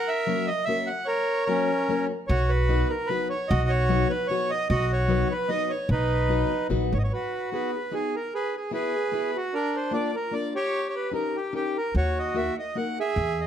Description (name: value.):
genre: musette waltz.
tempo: 149 BPM.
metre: 3/4.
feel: swing 55% on 8ths.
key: B major, G# minor from 7.1 s.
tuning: A4 = 438 Hz.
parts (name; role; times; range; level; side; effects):
accordion; melody; 0.0-13.5 s; C#4 to F#5; -26 LUFS; right 1 dB; none.
picked plugged-in steel-string acoustic guitar; accompaniment; 0.3-13.0 s; F#3 to B4; -30 LUFS; left 4 dB; none.
upright bass; bass; 2.3-7.1, 11.9-13.5 s; G#1 to E2; -24 LUFS; equal; none.
room: light reverb.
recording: close, detailed microphones.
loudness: -23 LUFS.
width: side -9 dB against mid.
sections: 0.0-7.1 A section; 7.1-13.5 B section.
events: none.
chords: 0.0 F#; 2.3 B; 7.1 G#m7; 8.3 Eadd9; 9.5 A#; 10.7 D#7; 11.9 D#m.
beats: 0.27 0.67 | 1.08 1.48 1.88 | 2.29 2.69 3.09 | 3.49 3.89 4.29 | 4.70 5.09 5.49 | 5.89 6.30 6.70 | 7.11 7.52 7.92 | 8.32 8.73 9.13 | 9.53 9.93 10.33 | 10.73 11.13 11.54 | 11.95 12.35 12.75 | 13.16.